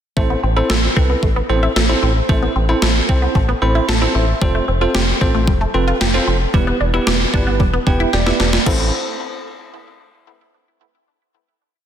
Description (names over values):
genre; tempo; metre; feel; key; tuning
synth-pop; 113 BPM; 4/4; straight; A minor; A4 = 441 Hz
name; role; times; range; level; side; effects
bell-like tine electric piano; accompaniment; 0.2-8.9 s; B3 to B5; -20 LUFS; right 2 dB; medium stereo tremolo
resonant blip pluck; arpeggios; 0.2-8.9 s; G3 to A4; -23 LUFS; left 2 dB; phaser, ping-pong delay
round analog bass; bass; 0.2-8.9 s; E1 to C2; -18 LUFS; equal; none
gated 80s digital drum machine; drums; 0.2-8.8 s; crash cymbal, kick drum, snare drum; -18 LUFS; equal; gated reverb, gated reverb snare, overdrive
room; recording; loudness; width
moderate lush hall reverb, RT60 1.9 s, digital ambience; dense, heavily limited modern master; -14 LUFS; side -9 dB against mid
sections
0.2-8.7 verse; 8.7-10.8 final chord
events
tine electric piano fill 3.4-4.4, 7.6-8.7; drum fill 8.1-8.7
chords
0.2 Amadd9; 4.4 Fadd9; 6.5 Em7; 8.7 Am